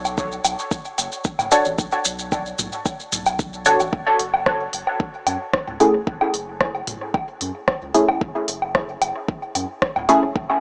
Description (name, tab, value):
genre	dub techno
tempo	112 BPM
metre	4/4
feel	straight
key	F# minor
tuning	A4 = 441 Hz
part	soft dub sub bass	bass	0.0-10.5 s	E1 to F#2	-38 LUFS	equal	sidechain pumping
part	maracas	percussion	0.0-3.9 s	none	-28 LUFS	equal	none
part	electronic woodblock and toms	percussion	0.1-10.6 s	none	-27 LUFS	equal	sidechain pumping on perc, sidechain pumping on toms, dub echo
part	electronic kick drum	drums	0.2-10.5 s	none	-28 LUFS	equal	none
part	deep house drum kit	drums	0.4-10.2 s	hi-hat, rim click	-26 LUFS	equal	dub echo
part	filtered dub chord stab	stabs	1.5-10.2 s	A3 to C#5	-23 LUFS	equal	chorus, phaser, cassette tape, sidechain pumping, dub echo
room	light reverb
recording	dry, gritty hardware recording, small speaker sound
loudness	-22 LUFS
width	mono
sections	0.0-3.9 A section; 3.9-10.6 A section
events	filter sweep on synth stab 3.9-10.6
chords	0.0 Bm7; 3.9 F#m7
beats	0.18 0.71 1.25 | 1.78 2.32 2.86 3.39 | 3.93 4.46 5.00 5.53 | 6.07 6.61 7.14 7.68 | 8.21 8.75 9.28 9.82 | 10.36